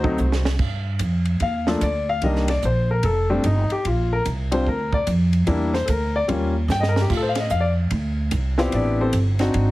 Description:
jazz piano trio; 148 BPM; 4/4; swing 64% on 8ths; G minor; A4 = 439 Hz
warm baby grand piano; melody; 0.0-9.7 s; Eb3 to G5; -22 LUFS; left 2 dB
upright bass; bass; 0.0-9.7 s; F1 to A2; -21 LUFS; right 1 dB
compact cocktail drum kit; drums; 0.0-9.7 s; crash cymbal, hi-hat, kick drum, ride cymbal, snare drum; -29 LUFS; right 2 dB
light reverb; heavily compressed radio sound, multiband compression; -19 LUFS; side -17 dB against mid
0.6-9.7 A section
drum fill 0.2-0.6, 6.7-7.1; grand piano solo 0.6-9.7
0.0 D7b9; 0.6 G7(no3); 2.2 Cm9; 3.0 Fadd9; 3.8 Bbadd9; 5.5 Em7b5; 6.3 Eb9; 7.1 Dm7; 8.7 Am7
0.18 | 0.59 1.00 1.41 1.81 | 2.22 2.63 3.03 3.44 | 3.85 4.25 4.66 5.07 | 5.47 5.88 6.29 6.69 | 7.10 7.51 7.91 8.32 | 8.73 9.13 9.54

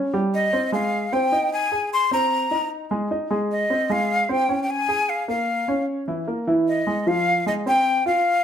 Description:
jazz; 151 BPM; 4/4; straight; A4 = 440 Hz
warm baby grand piano; accompaniment; 0.0-8.4 s; E3 to Ab5; -23 LUFS; right 1 dB
breathy bright jazz flute; melody; 0.3-8.4 s; Eb5 to C6; -21 LUFS; left 1 dB; plate reverb
wet studio reverb, RT60 0.8 s; -20 LUFS; side -8 dB against mid
0.0-8.4 A section
0.0 Eb6; 0.7 Ab; 3.9 Dbmaj7; 5.5 Bbm; 6.3 Emaj7#11; 7.1 F5
0.33 | 0.73 1.13 1.52 1.92 | 2.31 2.71 3.11 3.50 | 3.90 4.30 4.69 5.09 | 5.49 5.88 6.28 6.67 | 7.07 7.47 7.86 8.26

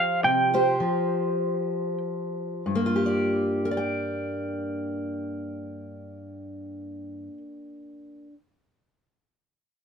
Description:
acoustic folk duo or small band; free time; G minor; A4 = 440 Hz
semi-hollow electric guitar; melody; 0.0-2.0 s; F5 to G5; -22 LUFS; right 2 dB; tremolo
fingerpicked steel-string acoustic guitar; accompaniment; 0.0-8.4 s; G2 to G5; -27 LUFS; left 1 dB
wet studio reverb, RT60 0.5 s; -24 LUFS; side -6 dB against mid
0.0-2.7 A section; 2.7-8.0 B section
slowing down 0.0-2.7
0.0 Csus4; 2.7 Gm7
free time

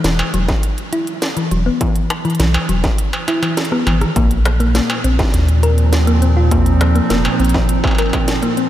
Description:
IDM; 102 BPM; 4/4; straight; A4 = 440 Hz
thumb-piano-like synth pluck; arpeggios; 0.0-8.7 s; Eb3 to Bb4; -19 LUFS; left 2 dB; chorus, diffuse ambient delay
warm sub bass; bass; 0.0-7.6 s; E1 to Eb2; -14 LUFS; equal; tube saturation
industrial drum kit; drums; 0.0-8.7 s; hi-hat, rim click, snare drum, struck metal; -21 LUFS; equal; diffuse ambient delay
electronic kick drum; drums; 0.5-8.2 s; -17 LUFS; equal; distortion
warbly tape-like pad; sustained chords; 4.8-8.7 s; Bb2 to Eb4; -20 LUFS; right 2 dB; chorus, built-in reverb
light reverb; -13 LUFS; side -12 dB against mid
0.0-8.7 A section
kick drops out 3.0-4.2; drum fill 3.6-4.2
0.0 N.C.; 4.2 Bbsus4
0.04 0.63 1.22 | 1.81 2.40 2.98 3.57 | 4.16 4.75 5.34 5.93 | 6.51 7.10 7.69 8.28

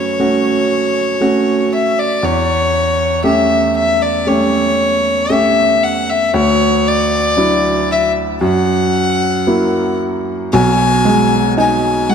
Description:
pop ballad; 58 BPM; 4/4; straight; F# minor; A4 = 441 Hz
clear violin; melody; 0.0-12.1 s; C#5 to G#5; -15 LUFS; left 3 dB; tape echo
clear baby grand piano; accompaniment; 0.0-12.1 s; B1 to G4; -14 LUFS; right 2 dB
moderate scoring stage reverb, RT60 2.0 s; dark, warm production; -12 LUFS; side -7 dB against mid
0.0-10.5 A section; 10.5-12.1 B section
0.0 F#m; 2.2 A7/E; 6.3 Dadd9; 8.4 F#7; 10.5 B6
0.20 1.22 | 2.23 3.25 4.28 5.31 | 6.34 7.38 8.42 9.47 | 10.53 11.57

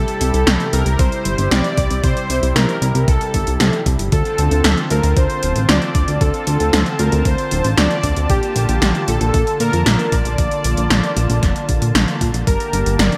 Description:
synthwave; 115 BPM; 4/4; straight; A4 = 440 Hz
soft supersaw; melody; 0.0-13.2 s; G4 to D5; -24 LUFS; equal; digital delay
brassy analog pad; sustained chords; 0.0-13.2 s; C3 to A5; -27 LUFS; equal; chorus, sidechain pumping
chorused synth bass; bass; 0.0-13.1 s; D1 to Bb2; -20 LUFS; equal; sidechain pumping
80s electronic pad drums; drums; 0.1-13.2 s; hi-hat, snare drum; -22 LUFS; equal; overdrive
electronic kick drum; drums; 1.0-12.6 s; -21 LUFS; equal; overdrive
light reverb; bright 1980s-style digital production; -17 LUFS; mono
0.0-13.2 A section
0.0 C; 4.1 Dm7; 8.3 Bbmaj7; 12.5 Gmadd9
0.47 0.99 1.51 | 2.04 2.56 3.08 3.60 | 4.12 4.65 5.17 5.69 | 6.21 6.73 7.25 7.78 | 8.30 8.82 9.34 9.86 | 10.38 10.91 11.43 11.95 | 12.47 12.99

